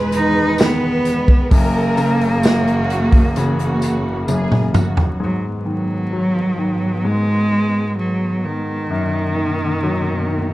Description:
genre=pop ballad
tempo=65 BPM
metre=4/4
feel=straight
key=unclear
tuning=A4 = 439 Hz
part: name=warm studio violin section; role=second line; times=0.0-5.2 s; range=F#4 to B4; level=-25 LUFS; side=right 1 dB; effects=none
part: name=clear grand piano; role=accompaniment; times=0.0-10.5 s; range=E1 to G#3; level=-22 LUFS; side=left 2 dB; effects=none
part: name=warm symphonic string section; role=sustained chords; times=0.0-10.5 s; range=E2 to D#4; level=-24 LUFS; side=right 1 dB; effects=none
part: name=natural country drum kit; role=drums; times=0.1-5.2 s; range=hi-hat, kick drum, snare drum, toms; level=-15 LUFS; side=equal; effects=none
part: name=tambourine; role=percussion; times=0.1-5.0 s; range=none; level=-38 LUFS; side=left 5 dB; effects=none
part: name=clear cello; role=melody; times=0.2-10.5 s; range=D#3 to D#4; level=-19 LUFS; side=right 1 dB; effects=none
room=light reverb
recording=vinyl crackle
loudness=-15 LUFS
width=side -17 dB against mid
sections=0.0-5.2 A section; 5.2-10.5 B section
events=drum fill 4.3-5.2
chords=0.0 Emaj7; 1.5 F#7; 5.2 G#m7; 8.9 Bmaj7/F#

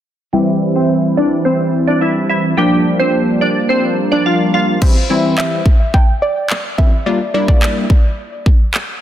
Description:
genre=dance-pop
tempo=107 BPM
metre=4/4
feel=straight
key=unclear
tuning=A4 = 440 Hz
part: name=glassy wavetable pluck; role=melody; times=0.3-4.7 s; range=C4 to G5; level=-16 LUFS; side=equal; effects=chorus, low-pass filter, digital delay
part: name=funky polysynth comp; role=accompaniment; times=0.3-7.9 s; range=E3 to F4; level=-15 LUFS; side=equal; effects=chorus, low-pass filter
part: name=soft round pluck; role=melody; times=4.8-9.0 s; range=C5 to G5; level=-20 LUFS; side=right 2 dB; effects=chorus, digital delay
part: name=pop drum kit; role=drums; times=4.8-8.9 s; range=crash cymbal, handclaps, kick drum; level=-12 LUFS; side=equal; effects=none
room=moderate echo chamber reverb, RT60 2.1 s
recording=dense, heavily limited modern master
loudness=-12 LUFS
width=side -11 dB against mid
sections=0.3-4.8 A section; 4.8-9.0 B section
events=filter sweep 0.3-4.8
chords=0.3 C; 2.6 Gm7; 4.8 C; 7.1 Gm

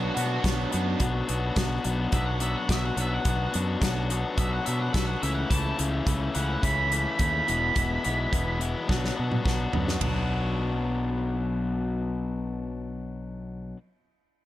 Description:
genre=indie rock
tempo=107 BPM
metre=4/4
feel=straight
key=B dorian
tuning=A4 = 440 Hz
part: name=octave-fuzz lead guitar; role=melody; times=0.0-8.6 s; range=F#4 to B5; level=-32 LUFS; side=right 2 dB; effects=distortion, tape echo
part: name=crunchy overdriven guitar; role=riff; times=0.0-13.8 s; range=E2 to F#4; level=-29 LUFS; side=left 3 dB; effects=none
part: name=raw garage guitar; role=riff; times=0.0-1.0 s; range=F#3 to F#4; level=-36 LUFS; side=right 10 dB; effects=overdrive, lush chorus, tape echo
part: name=fingered electric bass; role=bass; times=0.0-13.7 s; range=E1 to B2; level=-30 LUFS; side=equal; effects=none
part: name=loose indie drum kit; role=drums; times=0.2-10.1 s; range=hi-hat, kick drum, ride cymbal, snare drum, toms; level=-29 LUFS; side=equal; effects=none
room=little or no reverb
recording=none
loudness=-24 LUFS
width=side -14 dB against mid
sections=0.0-10.0 A section; 10.0-12.3 B section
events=lead electric guitar solo 0.0-10.0; drum fill 8.9-10.0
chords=0.0 Bm; 5.2 A/C#; 7.5 E; 8.9 Bm

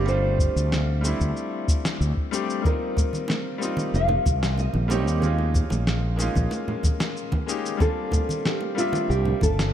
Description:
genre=sunset chillout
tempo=93 BPM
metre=4/4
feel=straight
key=F mixolydian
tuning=A4 = 440 Hz
part: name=nylon-string guitar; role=melody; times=0.0-9.7 s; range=F4 to F5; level=-28 LUFS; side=equal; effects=digital delay
part: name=bright grand piano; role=accompaniment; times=0.0-9.7 s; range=G3 to E5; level=-29 LUFS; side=moving between left 6 dB and right 6 dB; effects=auto-pan, tape echo
part: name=fretless electric bass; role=bass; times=0.0-9.7 s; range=F1 to Eb2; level=-23 LUFS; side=equal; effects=none
part: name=electronic cabasa and snare drum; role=drums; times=0.1-9.7 s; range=none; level=-30 LUFS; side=equal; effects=none
part: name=electronic kick drum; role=drums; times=0.4-9.6 s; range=none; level=-23 LUFS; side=equal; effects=overdrive
part: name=congas and bongos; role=percussion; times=2.7-9.6 s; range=none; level=-32 LUFS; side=right 2 dB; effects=none
room=light reverb, small room reverb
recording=dark, warm production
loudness=-21 LUFS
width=side -10 dB against mid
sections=0.0-9.7 A section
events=none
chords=0.1 G9sus4; 2.6 F9sus4; 5.2 Eb9sus4; 7.8 C9sus4

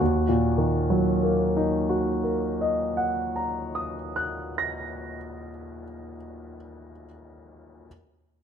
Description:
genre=classical, romantic nocturne for solo piano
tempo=43 BPM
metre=4/4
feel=rubato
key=Eb minor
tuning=A4 = 438 Hz
part: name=clear concert grand piano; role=solo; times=0.0-7.9 s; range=Eb2 to Bb6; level=-24 LUFS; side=equal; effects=none
room=moderate large studio reverb, RT60 1.4 s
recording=none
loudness=-23 LUFS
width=side -8 dB against mid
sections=0.0-5.6 A section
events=none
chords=0.0 Ebm

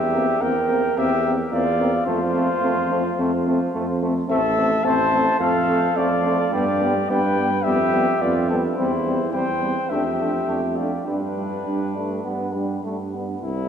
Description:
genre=classical, brass quintet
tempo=107 BPM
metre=4/4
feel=rubato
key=F major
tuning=A4 = 440 Hz
part: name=dark trumpet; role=melody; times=0.0-13.7 s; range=E4 to A5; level=-24 LUFS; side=left 5 dB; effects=none
part: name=mellow flugelhorn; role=second line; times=0.0-12.8 s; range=C4 to C5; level=-25 LUFS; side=right 4 dB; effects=none
part: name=clear tuba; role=bass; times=0.0-13.7 s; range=A1 to G2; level=-25 LUFS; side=right 3 dB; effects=none
part: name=clear trombone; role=accompaniment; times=0.1-13.4 s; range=G3 to B3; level=-30 LUFS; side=right 2 dB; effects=none
part: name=mellow French horn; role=accompaniment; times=0.1-13.3 s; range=B3 to D4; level=-27 LUFS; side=left 4 dB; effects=none
room=wet cathedral reverb, RT60 4.9 s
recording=dark, warm production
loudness=-19 LUFS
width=side -8 dB against mid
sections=0.0-13.4 A section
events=none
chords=0.0 C7/E; 2.1 F; 4.3 Am; 5.4 Dm7/F; 6.5 G; 7.6 G7/F; 8.8 C/E; 9.9 Dm/F; 11.1 G

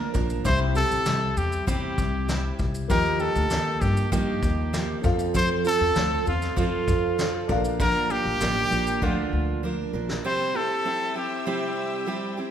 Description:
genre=acoustic pop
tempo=98 BPM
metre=4/4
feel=straight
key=unclear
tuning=A4 = 443 Hz
part: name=clear trumpet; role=melody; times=0.0-12.3 s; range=F4 to C5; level=-27 LUFS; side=left 1 dB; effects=none
part: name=picked steel-string acoustic guitar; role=accompaniment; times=0.0-12.5 s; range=Bb2 to Bb4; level=-28 LUFS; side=right 4 dB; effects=none
part: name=warm upright piano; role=accompaniment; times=0.0-10.3 s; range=Bb3 to F5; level=-35 LUFS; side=left 7 dB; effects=none
part: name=upright bass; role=bass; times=0.0-10.2 s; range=A1 to G2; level=-28 LUFS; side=left 1 dB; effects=none
part: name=vintage brush drum kit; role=drums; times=0.1-10.2 s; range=kick drum, shaker, snare drum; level=-29 LUFS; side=left 1 dB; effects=none
part: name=clear symphonic string section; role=sustained chords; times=10.2-12.5 s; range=C5 to E6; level=-36 LUFS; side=left 1 dB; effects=none
room=moderate recital hall reverb, RT60 1.4 s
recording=recorded in a church or concert hall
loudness=-22 LUFS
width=side -9 dB against mid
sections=0.0-10.2 A section; 10.2-12.5 A section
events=drum fill 9.0-10.2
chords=0.5 C; 2.9 Ebadd9; 5.0 F; 7.5 Bb; 10.2 C

